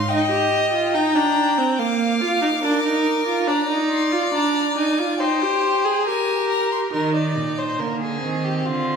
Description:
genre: classical, baroque-style fugue for string quartet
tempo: 70 BPM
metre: 4/4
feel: straight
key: unclear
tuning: A4 = 440 Hz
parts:
  - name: clear violin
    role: melody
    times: 0.0-6.8 s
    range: G5 to D6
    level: -24 LUFS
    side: left 5 dB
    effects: none
  - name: rich violin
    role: second line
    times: 0.0-9.0 s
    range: F4 to G5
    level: -24 LUFS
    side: left 1 dB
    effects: none
  - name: clear viola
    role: accompaniment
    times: 0.0-9.0 s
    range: Bb3 to Ab4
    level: -21 LUFS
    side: right 2 dB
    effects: none
  - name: clear cello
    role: bass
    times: 0.0-0.1, 6.9-9.0 s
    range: Bb2 to Eb3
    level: -27 LUFS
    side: right 3 dB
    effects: none
room: wet recital hall reverb, RT60 1.6 s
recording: recorded in a church or concert hall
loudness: -18 LUFS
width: side -6 dB against mid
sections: 0.0-6.9 A section; 6.9-9.0 B section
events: none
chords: 0.1 Eb; 1.8 Bb; 3.5 Bb7/D; 5.2 Eb; 6.9 Eb5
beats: | 0.09 0.94 1.79 2.63 | 3.48 4.34 5.20 6.07 | 6.94 7.80 8.66

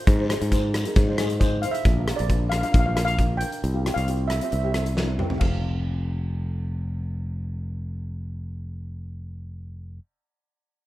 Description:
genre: calypso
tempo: 135 BPM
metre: 4/4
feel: straight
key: F major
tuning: A4 = 440 Hz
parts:
  - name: steel pan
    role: melody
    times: 0.0-10.0 s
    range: Ab4 to G5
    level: -29 LUFS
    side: equal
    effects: none
  - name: nylon-string guitar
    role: accompaniment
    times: 0.0-10.0 s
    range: C4 to Eb5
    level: -32 LUFS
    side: equal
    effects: double-tracked left and right
  - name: modern bright fingered electric bass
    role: bass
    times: 0.1-10.0 s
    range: F1 to Ab2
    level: -26 LUFS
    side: equal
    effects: none
  - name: big rock drum kit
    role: drums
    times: 0.1-5.5 s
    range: crash cymbal, hi-hat, kick drum, rim click, snare drum, toms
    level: -24 LUFS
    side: equal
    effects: none
  - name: guiro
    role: percussion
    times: 0.1-1.5 s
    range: none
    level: -40 LUFS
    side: left 2 dB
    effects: none
room: small room ambience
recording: rough home demo mix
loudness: -22 LUFS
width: side -16 dB against mid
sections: 0.0-5.4 A section; 5.4-9.0 B section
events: drum fill 5.0-5.4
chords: 0.1 Ab; 1.8 Bb; 3.6 Csus4; 4.5 C; 5.4 F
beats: | 0.06 0.51 0.95 1.40 | 1.84 2.29 2.73 3.18 | 3.62 4.07 4.52 4.96 | 5.41 5.85 6.30 6.75 | 7.19 7.64 8.09 8.53

